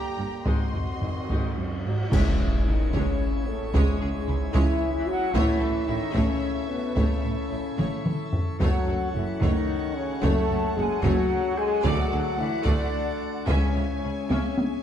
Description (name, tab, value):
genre	cinematic, epic orchestral film score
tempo	74 BPM (dotted quarters)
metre	6/8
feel	straight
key	C# minor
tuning	A4 = 441 Hz
part	clear symphonic violin section	melody	0.0-14.8 s	E5 to C6	-41 LUFS	left 5 dB	none
part	rich studio violin section	second line	0.0-14.6 s	E4 to G5	-40 LUFS	left 2 dB	none
part	bright trombone section	sustained chords	0.0-14.8 s	G#2 to A3	-37 LUFS	right 3 dB	none
part	dark French horn section	sustained chords	0.0-14.8 s	G#3 to A4	-30 LUFS	left 5 dB	none
part	warm trumpet	stabs	0.0-1.8 s	Gb4 to G4	-37 LUFS	right 6 dB	none
part	clear chamber viola section	accompaniment	0.2-14.6 s	Ab3 to Eb4	-35 LUFS	right 2 dB	none
part	rich symphonic cello section	bass	0.2-14.4 s	C#2 to A2	-32 LUFS	right 2 dB	none
part	rich symphonic double bass section	bass	0.2-14.4 s	F#1 to D2	-31 LUFS	right 3 dB	none
part	solo taiko drums	drums	0.5-14.8 s	none	-27 LUFS	equal	none
part	mellow hollow flute section	second line	1.8-14.6 s	G#4 to A5	-35 LUFS	equal	none
part	pipe organ, plenum	sustained chords	2.1-14.8 s	G#3 to E5	-35 LUFS	equal	none
part	clash cymbals and concert bass drum	percussion	2.1-3.2 s	none	-30 LUFS	equal	none
part	timpani	percussion	2.1-2.9, 13.5-14.3 s	C#3	-35 LUFS	left 1 dB	none
part	impact	sound effects	2.3-3.7 s	none	-37 LUFS	equal	none
room	moderate scoring stage reverb, RT60 1.6 s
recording	dark, warm production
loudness	-23 LUFS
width	side -9 dB against mid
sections	0.0-2.1 A section; 2.1-14.8 B section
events	band accent 2.1-2.7; impact 2.1-3.7; drum fill 7.8-8.6, 14.3-14.8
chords	0.5 Ab7; 2.1 C#m; 5.3 A; 8.6 F#m; 11.8 D; 13.5 C#m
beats	| 0.46 1.29 | 2.12 2.94 | 3.74 4.54 | 5.35 6.15 | 6.97 7.79 | 8.61 9.42 | 10.23 11.04 | 11.84 12.65 | 13.47 14.30